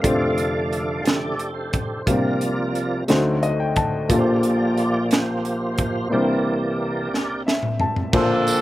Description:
slow gospel; 59 BPM (dotted quarters); 6/8; straight; A4 = 440 Hz
clear upright piano; accompaniment; 0.0-8.6 s; F1 to A5; -22 LUFS; left 1 dB
tonewheel organ; sustained chords; 0.0-8.6 s; F2 to F5; -24 LUFS; right 2 dB; slow rotary speaker, overdrive, chorus vibrato
crisp fusion drum kit; drums; 0.0-8.6 s; crash cymbal, hi-hat, kick drum, ride cymbal, snare drum, toms; -23 LUFS; equal
clear saxophone section; melody; 8.2-8.6 s; C4 to A4; -22 LUFS; right 2 dB
tambourine; percussion; 8.5-8.6 s; -27 LUFS; right 4 dB
little or no reverb; -19 LUFS; side -15 dB against mid
0.0-8.1 A section
tonewheel organ solo 0.0-8.1; upright piano fill 3.1-4.1, 7.1-8.1; drum fill 7.1-8.1
0.0 F69; 2.1 C9sus4; 3.1 D7b9; 4.1 Gm11/Bb; 6.1 C9

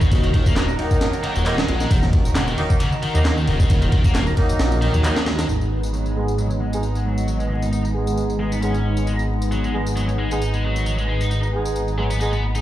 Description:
breakbeat, breaks; 134 BPM; 4/4; swing 54% on 16ths; G# minor; A4 = 440 Hz
phased analog pad; sustained chords; 0.0-12.6 s; D#3 to A#4; -26 LUFS; equal; phaser, chorus, sidechain pumping
scooped high-gain guitar; riff; 0.0-12.6 s; C#3 to D#4; -28 LUFS; equal; distortion, tube saturation, low-pass filter, ping-pong delay
detuned saw bass; bass; 0.0-12.6 s; D#1 to D#2; -21 LUFS; equal
breakbeat sampler-style drum kit; drums; 0.0-5.5 s; kick drum, ride cymbal, snare drum; -19 LUFS; equal; low-pass filter on snare, studio reverb, low-pass filter on cymbals, low-pass filter on kick
electronic tambourine and handclaps; drums; 0.0-12.6 s; -34 LUFS; left 1 dB; studio reverb
bright horn section; stabs; 0.8-12.3 s; D#3 to G#4; -28 LUFS; right 2 dB; vintage 12-bit sampler grit, low-pass filter, ping-pong delay
light reverb; played on a big sound system in a bare room, large studio reverb, vinyl crackle; -18 LUFS; side -13 dB against mid
0.0-5.5 A section; 5.5-12.6 B section
band accent 5.0; filter sweep on distorted electric guitar 5.5-12.6
0.0 D#m; 5.5 G#m

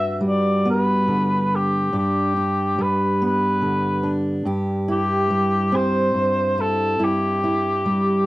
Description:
folk; 48 BPM (dotted quarters); 6/8; straight; G major; A4 = 439 Hz
mellow cor anglais; melody; 0.0-8.3 s; G4 to E5; -21 LUFS; left 1 dB; cassette tape
fingerpicked steel-string acoustic guitar; accompaniment; 0.0-8.3 s; G2 to B4; -21 LUFS; right 1 dB; cassette tape
moderate studio reverb, RT60 0.6 s; home recording on cassette; -18 LUFS; side -18 dB against mid
0.0-8.3 A section
0.0 Gmaj7; 4.5 C/G

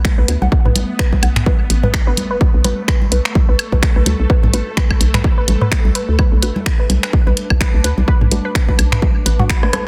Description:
minimal techno; 127 BPM; 4/4; swing 57% on 16ths; B minor; A4 = 441 Hz
electronic kick drum; drums; 0.0-9.6 s; -17 LUFS; equal; overdrive
house drum kit; drums; 0.0-9.8 s; finger snaps, hi-hat, rim click; -24 LUFS; equal; overdrive, soft clipping on snare
electronic congas, toms and woodblock; percussion; 0.0-9.8 s; -24 LUFS; equal
swarming drone; texture; 0.1-9.9 s; A3 to A4; -31 LUFS; equal; built-in reverb, sidechain pumping
resonant blip pluck; riff; 0.2-9.8 s; F#4 to B5; -28 LUFS; equal; chorus, sidechain pumping, tape echo
hollow knocking FM bass; bass; 0.2-9.9 s; F#1 to D2; -19 LUFS; equal; sidechain pumping
filtered dub chord stab; stabs; 0.3-9.7 s; A3 to F#4; -30 LUFS; equal; phaser, vintage 12-bit sampler grit, dub echo
little or no reverb; dense, heavily limited modern master; -15 LUFS; mono
0.0-9.9 A section
drum fill 9.6
0.0 Bm7

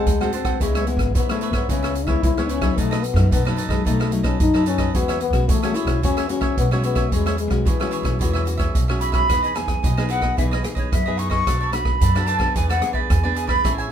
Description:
samba and choro; 110 BPM; 4/4; straight; E major; A4 = 440 Hz
breathy trombone; second line; 0.0-8.7 s; E3 to E4; -24 LUFS; left 6 dB
cavaquinho; accompaniment; 0.0-13.9 s; D4 to G#5; -29 LUFS; right 7 dB
nylon-string guitar; accompaniment; 0.0-13.9 s; F#2 to G#4; -28 LUFS; left 3 dB
upright bass; bass; 0.1-13.9 s; G#1 to E3; -24 LUFS; right 1 dB
swinging big-band drum kit; drums; 0.1-13.9 s; hi-hat, kick drum, rim click; -23 LUFS; equal
breathy jazz flute; melody; 9.0-13.7 s; C#5 to C#6; -23 LUFS; right 1 dB
moderate studio reverb, RT60 0.6 s; minimal, uncompressed stereo recording; -18 LUFS; side -9 dB against mid
0.0-9.3 A section; 9.3-13.9 B section
trombone solo 0.0-9.3
0.0 D7#11; 0.6 C#m7; 2.8 B7; 4.9 E69; 9.3 Emaj7; 11.5 Bm7; 12.6 E7

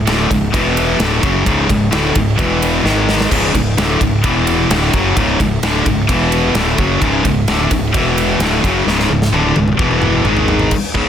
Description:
heavy metal; 130 BPM; 4/4; straight; A4 = 440 Hz
heavy high-gain guitar; riff; 0.0-11.1 s; C#2 to G#3; -16 LUFS; left 6 dB; distortion
scooped high-gain guitar; riff; 0.0-11.1 s; C#2 to G#3; -18 LUFS; right 10 dB; distortion
fuzz fingered electric bass; bass; 0.0-11.1 s; C#1 to G#1; -20 LUFS; equal; overdrive
big rock drum kit; drums; 0.1-11.1 s; crash cymbal, kick drum, ride cymbal, snare drum, splash cymbal, toms; -18 LUFS; equal
light reverb; dense, heavily limited modern master; -12 LUFS; side -9 dB against mid
0.0-10.7 A section
drum fill 2.8-3.3, 8.9-10.7
0.0 C#5; 0.5 E5; 1.0 C#5; 2.4 E5; 2.8 G#5; 3.3 C#5; 4.2 E5; 4.7 C#5; 6.1 E5; 6.6 C#5; 7.9 E5; 8.4 C#5; 9.8 E5; 10.3 G#5

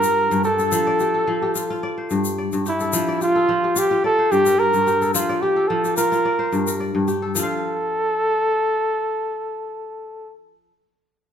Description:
west african traditional, West African string and xylophone music; 108 BPM; 4/4; straight; F major; A4 = 438 Hz
warm flugelhorn; melody; 0.0-10.3 s; E4 to Bb4; -19 LUFS; equal
kora; arpeggios; 0.0-10.8 s; G2 to F5; -23 LUFS; left 2 dB
egg shaker; percussion; 0.0-7.6 s; -27 LUFS; left 7 dB
moderate large studio reverb, RT60 1.2 s; band playing live in one room; -18 LUFS; side -8 dB against mid
0.0-7.3 A section; 7.3-9.6 B section
0.0 Gm; 0.7 F; 1.8 G5; 2.9 F; 4.0 Gm; 5.1 F; 6.2 Gm; 7.3 F

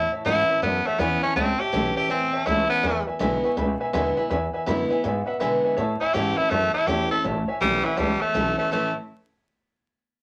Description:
rockabilly; 163 BPM; 4/4; swing 64% on 8ths; A major; A4 = 436 Hz
raspy tenor saxophone; melody; 0.0-3.1, 6.0-8.9 s; E3 to A4; -25 LUFS; equal
bright upright piano; accompaniment; 0.0-8.9 s; B4 to C#6; -31 LUFS; equal
picked steel-string acoustic guitar; accompaniment; 0.0-8.9 s; E2 to E4; -31 LUFS; equal
upright bass; bass; 0.0-8.9 s; A1 to B2; -31 LUFS; equal
wet small room reverb, RT60 0.5 s; vinyl crackle; -23 LUFS; mono
0.0-7.2 A section; 7.2-8.7 B section; 8.7-10.2 C section
upright piano fill 3.2-4.3
0.0 A; 2.8 E7; 5.8 A

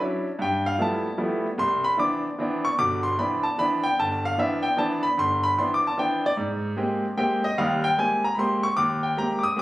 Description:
jazz; 150 BPM; 3/4; swing 65% on 8ths; C major; A4 = 440 Hz
clear grand piano; solo; 0.0-9.6 s; G1 to Eb6; -22 LUFS; equal
moderate studio reverb, RT60 0.8 s; recorded on a phone in the room, club reverb, compression; -22 LUFS; side -16 dB against mid
0.0-1.6 A section; 1.6-9.6 A section
0.4 G13; 1.6 Cmaj9; 6.4 Abmaj9

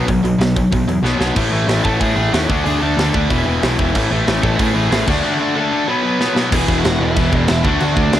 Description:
punk rock; 186 BPM; 4/4; straight; A4 = 440 Hz
distorted electric guitar; riff; 0.0-8.2 s; E2 to D4; -19 LUFS; left 6 dB; distortion
distorted electric guitar; riff; 0.0-8.2 s; E2 to D4; -21 LUFS; right 9 dB; overdrive
fuzz picked electric bass; bass; 0.0-8.2 s; E1 to A2; -19 LUFS; right 1 dB; overdrive
tight metal drum kit; drums; 0.1-8.2 s; crash cymbal, hi-hat, kick drum, snare drum; -20 LUFS; right 1 dB; cassette tape
lead guitar through a small cranked amp; melody; 1.9-8.2 s; D4 to B5; -23 LUFS; equal; overdrive, cassette tape, analog delay
small room ambience; home recording on cassette; -14 LUFS; side -12 dB against mid
0.0-1.4 A section; 1.4-6.5 B section; 6.5-8.2 C section
drum fill 1.0-1.4, 6.2-6.5
0.0 B5; 1.4 A5; 2.5 D; 3.3 E5; 3.9 A5; 5.1 D; 5.9 B5; 6.5 E; 7.6 D

